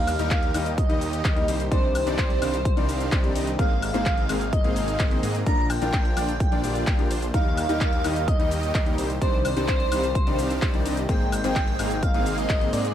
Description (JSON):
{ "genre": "EDM, festival progressive house", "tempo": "128 BPM", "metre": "4/4", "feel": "straight", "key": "Eb major", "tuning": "A4 = 441 Hz", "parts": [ { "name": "airy dreamy lead", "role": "melody", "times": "0.0-12.9 s", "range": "C5 to Bb5", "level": "-29 LUFS", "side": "right 1 dB", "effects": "chorus, ping-pong delay" }, { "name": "warm grand piano", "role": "accompaniment", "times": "0.0-12.9 s", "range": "Ab2 to G4", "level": "-30 LUFS", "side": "left 5 dB", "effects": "sidechain pumping" }, { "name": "lush unison pad", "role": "sustained chords", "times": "0.0-12.9 s", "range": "Bb2 to D5", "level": "-36 LUFS", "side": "right 1 dB", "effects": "none" }, { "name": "detuned saw bass", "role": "bass", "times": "0.0-12.9 s", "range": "Ab1 to Ab2", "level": "-29 LUFS", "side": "equal", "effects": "sidechain pumping" }, { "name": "big-room dance drum kit", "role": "drums", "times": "0.1-12.9 s", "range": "cabasa, handclaps, hi-hat, woodblock", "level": "-32 LUFS", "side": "left 2 dB", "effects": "none" }, { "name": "supersaw chords", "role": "riff", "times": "0.2-12.9 s", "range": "Bb3 to F5", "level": "-31 LUFS", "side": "right 1 dB", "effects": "sidechain pumping" }, { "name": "electronic kick drum", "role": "drums", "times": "0.3-12.6 s", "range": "none", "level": "-23 LUFS", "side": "equal", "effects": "none" } ], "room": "little or no reverb", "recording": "none", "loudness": "-21 LUFS", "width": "side -10 dB against mid", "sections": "0.0-12.9 A section", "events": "none", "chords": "0.0 Eb; 1.7 Cmadd9; 3.6 Abadd9; 5.5 Bb; 7.3 Eb; 9.2 Cmadd9; 11.1 Abadd9" }